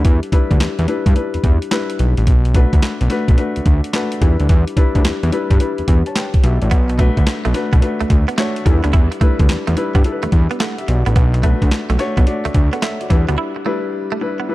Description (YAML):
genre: R&B, new jack swing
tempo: 108 BPM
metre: 4/4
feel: swing 66% on 16ths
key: unclear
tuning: A4 = 438 Hz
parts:
  - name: dark baby grand piano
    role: accompaniment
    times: 0.0-14.5 s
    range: G3 to A5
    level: -21 LUFS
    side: left 3 dB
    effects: none
  - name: fat analog bass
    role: bass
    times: 0.0-13.4 s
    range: A1 to G2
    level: -16 LUFS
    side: equal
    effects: none
  - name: boom bap sampler-style drum kit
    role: drums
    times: 0.0-13.4 s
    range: handclaps, hi-hat, kick drum, snare drum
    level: -15 LUFS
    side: equal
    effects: none
  - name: direct-recorded clean electric guitar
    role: riff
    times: 6.7-14.5 s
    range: A3 to E4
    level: -26 LUFS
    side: right 6 dB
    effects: wide subtle chorus
room: little or no reverb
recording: dark, warm production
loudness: -14 LUFS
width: side -17 dB against mid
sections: 0.0-14.5 A section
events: break 13.4-14.5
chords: 0.0 Em7; 2.3 Bm7; 4.2 Em7; 6.7 Bm7; 8.7 Em7; 11.2 Bm7; 13.1 Em7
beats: | 0.05 0.60 1.16 1.71 | 2.27 2.83 3.38 3.94 | 4.49 5.05 5.60 6.16 | 6.71 7.27 7.83 8.38 | 8.94 9.49 10.05 10.60 | 11.16 11.71 12.27 12.82 | 13.38 13.94 14.49